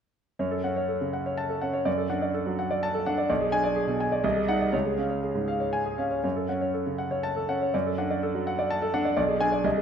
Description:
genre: classical, virtuoso piano study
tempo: 123 BPM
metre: 3/4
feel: uneven beats, rubato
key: F# minor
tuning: A4 = 440 Hz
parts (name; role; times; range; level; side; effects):
- clear concert grand piano; solo; 0.4-9.8 s; B1 to A5; -24 LUFS; equal; none
room: moderate recital hall reverb, RT60 1.6 s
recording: none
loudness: -25 LUFS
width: side -7 dB against mid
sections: 0.4-9.8 A section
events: none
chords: 0.4 F#m; 1.9 D/F#; 3.3 G#dim/B; 4.2 G#7/B#; 4.7 C#; 6.2 F#m; 7.7 D/F#; 9.2 G#dim/B

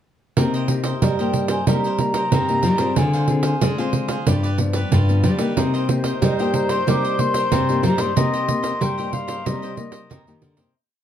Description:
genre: samba and choro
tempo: 92 BPM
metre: 4/4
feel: straight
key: C minor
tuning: A4 = 440 Hz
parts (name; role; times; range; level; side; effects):
- cavaquinho; accompaniment; 0.4-10.7 s; D4 to F5; -30 LUFS; right 3 dB; none
- nylon-string guitar; accompaniment; 0.4-10.7 s; G2 to Ab4; -26 LUFS; left 5 dB; none
- nylon-string guitar; bass; 0.4-10.7 s; G2 to Ab3; -22 LUFS; equal; none
- pandeiro; percussion; 0.4-10.7 s; none; -22 LUFS; right 4 dB; none
- baroque flute; melody; 1.0-10.1 s; Eb5 to D6; -25 LUFS; left 1 dB; none
- warm clarinet; second line; 5.6-10.4 s; C5 to G5; -28 LUFS; left 3 dB; none
room: light reverb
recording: dark, warm production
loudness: -18 LUFS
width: side -10 dB against mid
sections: 0.4-10.8 A section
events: fade-out 8.2-10.8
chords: 0.4 Cm7; 3.0 Dm7b5; 4.3 G7; 5.6 Cm7

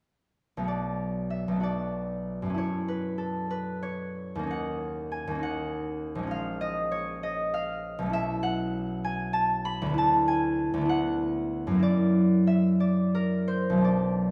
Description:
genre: classical, solo harp piece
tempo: 56-67 BPM (dotted quarters)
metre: 6/8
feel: rubato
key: B dorian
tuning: A4 = 439 Hz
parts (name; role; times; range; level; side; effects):
- concert harp; solo; 0.6-14.3 s; A#1 to B5; -28 LUFS; equal; none
room: moderate scoring stage reverb, RT60 2.0 s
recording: none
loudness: -28 LUFS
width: mono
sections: 0.7-14.3 A section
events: none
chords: 0.7 Bm7; 2.6 F#m7; 4.5 D#m7; 6.3 A#m7; 8.1 B9sus4; 10.0 D69; 11.8 F#aug7

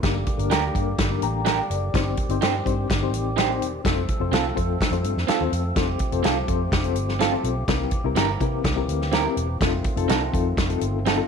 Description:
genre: uptempo 1960s-style soul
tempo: 125 BPM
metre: 4/4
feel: straight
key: unclear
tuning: A4 = 440 Hz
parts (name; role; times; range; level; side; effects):
- reed electric piano; accompaniment; 0.0-11.3 s; Bb3 to Bb5; -28 LUFS; left 14 dB; fast tremolo
- percussive tonewheel organ; sustained chords; 0.0-11.3 s; D3 to A4; -32 LUFS; right 1 dB; slow rotary speaker, overdrive
- vintage muted fingered electric bass; bass; 0.0-11.2 s; E1 to C3; -27 LUFS; right 1 dB; none
- natural country drum kit; drums; 0.0-11.2 s; hi-hat, kick drum, snare drum; -24 LUFS; equal; none
- electric guitar through a small old amp; stabs; 0.5-11.2 s; C4 to C5; -26 LUFS; right 12 dB; slapback echo
room: light reverb, small room ambience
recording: 1960s-style stereo with parts hard left and right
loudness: -20 LUFS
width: side -6 dB against mid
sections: 0.0-11.3 A section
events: none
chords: 0.0 Gm; 1.9 Cm/G; 3.8 F; 7.7 C7; 9.6 F7

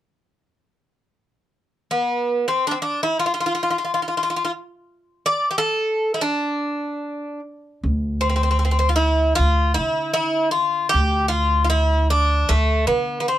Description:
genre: Turkish makam ensemble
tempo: free time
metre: none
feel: none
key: D makam huseyni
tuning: A4 = 437 Hz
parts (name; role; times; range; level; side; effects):
- Greek bouzouki; melody; 1.9-13.4 s; A3 to D5; -20 LUFS; equal; none
- upright bass; bass; 7.8-13.4 s; D2 to D3; -20 LUFS; right 1 dB; none
room: light reverb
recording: none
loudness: -18 LUFS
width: side -12 dB against mid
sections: 1.6-7.8 A section; 7.8-13.4 B section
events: none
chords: none

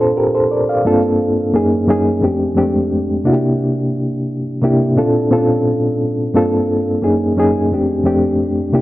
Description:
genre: soul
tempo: 88 BPM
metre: 4/4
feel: straight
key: F major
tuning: A4 = 439 Hz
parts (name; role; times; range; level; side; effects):
- reed electric piano; solo; 0.0-8.8 s; F2 to F5; -13 LUFS; equal; fast tremolo
room: moderate plate reverb, RT60 2.8 s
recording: dark, warm production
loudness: -13 LUFS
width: side -16 dB against mid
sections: 0.0-8.8 A section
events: none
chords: 0.0 Bbmaj7; 0.9 Gm11; 1.5 Gb69; 2.2 F69; 3.3 C7; 5.0 Bbmaj7; 6.3 Gm11; 7.0 Gb69; 7.7 F69

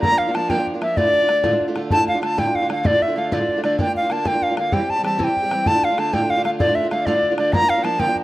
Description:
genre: celtic folk, Celtic jig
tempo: 128 BPM (dotted quarters)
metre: 6/8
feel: straight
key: D minor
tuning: A4 = 441 Hz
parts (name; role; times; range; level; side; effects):
- bright reedy wooden flute; melody; 0.0-8.2 s; D5 to Bb5; -18 LUFS; equal; slapback echo
- picked steel-string acoustic guitar; accompaniment; 0.0-8.2 s; D2 to G4; -23 LUFS; right 2 dB; none
- bodhran; percussion; 0.0-8.2 s; none; -25 LUFS; left 1 dB; none
room: light reverb, small room ambience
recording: rough home demo mix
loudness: -17 LUFS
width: side -16 dB against mid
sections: 0.0-1.9 A section; 1.9-8.2 A section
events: none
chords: 0.0 Bb/D; 1.0 Dm; 3.8 Bb; 4.7 C; 5.7 Dm; 7.5 Bb/D

